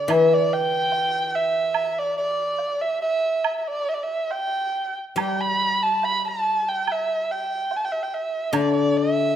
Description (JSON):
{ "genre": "chinese traditional, Chinese chamber ensemble", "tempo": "71 BPM", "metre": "2/4", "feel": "rubato", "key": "D zhi mode", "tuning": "A4 = 435 Hz", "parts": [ { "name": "dark erhu", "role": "melody", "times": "0.0-9.4 s", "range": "D5 to B5", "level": "-22 LUFS", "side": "right 2 dB", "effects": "none" }, { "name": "guzheng", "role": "accompaniment", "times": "0.0-2.6, 5.2-9.4 s", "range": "D3 to G3", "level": "-22 LUFS", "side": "left 3 dB", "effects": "none" }, { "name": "woodblock", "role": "percussion", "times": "0.1-8.7 s", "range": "none", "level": "-30 LUFS", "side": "right 6 dB", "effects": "none" } ], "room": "moderate recital hall reverb, RT60 1.5 s", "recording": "minimal, uncompressed stereo recording", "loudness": "-21 LUFS", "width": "side -10 dB against mid", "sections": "0.0-9.4 A section", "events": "none", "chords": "none", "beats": "| 0.09 0.92 | 1.75 2.60 | 3.45 4.32 | 5.18 6.03 | 6.87 7.71 | 8.54" }